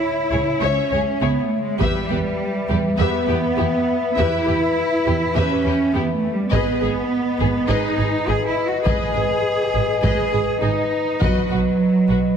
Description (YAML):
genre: cinematic, epic orchestral film score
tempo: 102 BPM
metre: 4/4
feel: straight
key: unclear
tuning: A4 = 440 Hz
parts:
  - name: mellow French horn section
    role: sustained chords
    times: 0.0-12.4 s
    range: B4 to E5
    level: -24 LUFS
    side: left 4 dB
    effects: none
  - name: rich symphonic cello section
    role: bass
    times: 0.0-12.4 s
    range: F#3 to G#4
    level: -21 LUFS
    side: right 3 dB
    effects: none
  - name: warm studio violin section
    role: melody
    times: 0.3-12.2 s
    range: G4 to E5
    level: -31 LUFS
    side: left 4 dB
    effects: none
  - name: rich symphonic violin section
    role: second line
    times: 0.3-12.2 s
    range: D#4 to C#5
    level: -29 LUFS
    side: left 4 dB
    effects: none
  - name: rich studio viola section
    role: accompaniment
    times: 0.3-12.2 s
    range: F#4 to C#5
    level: -30 LUFS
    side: right 1 dB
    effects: none
  - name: rich symphonic double bass section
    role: bass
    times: 0.3-12.2 s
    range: G#1 to E2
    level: -24 LUFS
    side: right 3 dB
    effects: none
  - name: solo taiko drums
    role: drums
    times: 1.8-2.9, 6.5-11.8 s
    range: none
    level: -24 LUFS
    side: left 1 dB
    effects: none
room: wet scoring stage reverb, RT60 1.5 s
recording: heavily compressed radio sound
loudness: -17 LUFS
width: side -7 dB against mid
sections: 0.0-12.4 A section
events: none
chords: 0.0 C#m; 1.8 Em; 6.5 G#m; 11.2 B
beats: 0.02 0.61 1.21 | 1.80 2.39 2.98 3.57 | 4.17 4.76 5.35 5.93 | 6.52 7.11 7.69 8.28 | 8.86 9.45 10.04 10.62 | 11.21 11.80